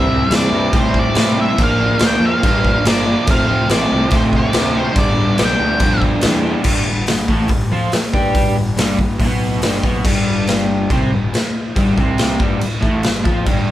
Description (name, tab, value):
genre	garage rock duo or trio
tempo	142 BPM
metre	4/4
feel	straight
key	G mixolydian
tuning	A4 = 439 Hz
part	octave-fuzz lead guitar	melody	0.0-6.0 s	C5 to G5	-20 LUFS	left 1 dB	distortion
part	crunchy overdriven guitar	riff	0.0-13.7 s	F2 to G4	-18 LUFS	equal	none
part	fuzz picked electric bass	bass	0.0-13.7 s	F1 to A2	-22 LUFS	equal	overdrive
part	raw garage drum kit	drums	0.3-13.6 s	crash cymbal, hi-hat, kick drum, snare drum	-17 LUFS	equal	none
room	light reverb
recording	band playing live in one room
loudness	-13 LUFS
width	side -14 dB against mid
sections	0.0-6.7 A section; 6.7-10.0 B section; 10.0-13.7 C section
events	none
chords	0.0 C; 1.6 Bb; 3.3 F; 5.0 G; 10.0 G5